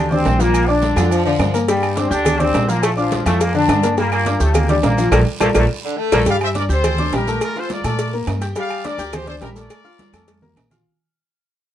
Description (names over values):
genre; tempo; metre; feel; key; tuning
latin, salsa; 209 BPM; 4/4; straight; unclear; A4 = 440 Hz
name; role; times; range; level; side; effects
bright trombone section; melody; 0.0-6.2 s; G2 to F4; -20 LUFS; equal; none
clear concert grand piano; accompaniment; 0.0-10.8 s; D3 to G6; -20 LUFS; left 3 dB; none
upright bass; bass; 0.0-10.8 s; Bb1 to Bb2; -20 LUFS; right 1 dB; none
congas; percussion; 0.1-10.8 s; none; -25 LUFS; right 1 dB; none
maracas; percussion; 0.1-10.9 s; none; -36 LUFS; right 8 dB; none
guiro; percussion; 0.3-10.9 s; none; -37 LUFS; right 6 dB; none
timbales and agogo bells; percussion; 0.3-10.9 s; none; -26 LUFS; right 5 dB; none
claves; percussion; 0.5-10.7 s; none; -33 LUFS; left 6 dB; none
clear saxophone section; second line; 1.0-1.6, 5.8-6.3 s; D3 to A3; -22 LUFS; left 1 dB; none
cowbell; percussion; 1.7-10.9 s; none; -25 LUFS; left 2 dB; none
bright trumpet section; melody; 6.3-10.4 s; F4 to F5; -24 LUFS; left 1 dB; none
room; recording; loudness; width
moderate studio reverb, RT60 0.5 s; worn, warbling old tape, cassette tape, warbly pitch drift; -15 LUFS; side -11 dB against mid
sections
0.0-6.3 A section; 6.3-10.9 B section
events
band accent 5.1-6.3; drum fill 5.7-6.3, 10.0-10.9; fade-out 6.3-10.9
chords
0.0 Gm7 (rootless); 0.5 Bb; 2.8 Bbmaj7; 6.3 Gm; 7.4 Bbmaj7; 8.6 Gm7; 9.7 Bbmaj7